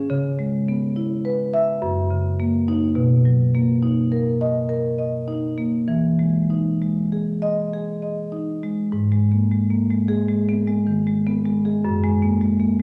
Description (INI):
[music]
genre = classical, contemporary piece for solo marimba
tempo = 96-106 BPM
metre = 5/4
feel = rubato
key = G# minor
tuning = A4 = 440 Hz
[part]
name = marimba with soft mallets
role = solo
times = 0.0-12.8 s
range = F#2 to E5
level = -21 LUFS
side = equal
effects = none
[sound]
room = wet recital hall reverb, RT60 1.5 s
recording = none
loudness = -21 LUFS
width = mono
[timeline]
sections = 0.0-8.9 A section; 8.9-12.8 B section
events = none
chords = 0.1 C#m7; 1.8 F#6; 3.0 Bmaj7; 5.9 Emaj7; 8.9 G#m; 11.8 F#add9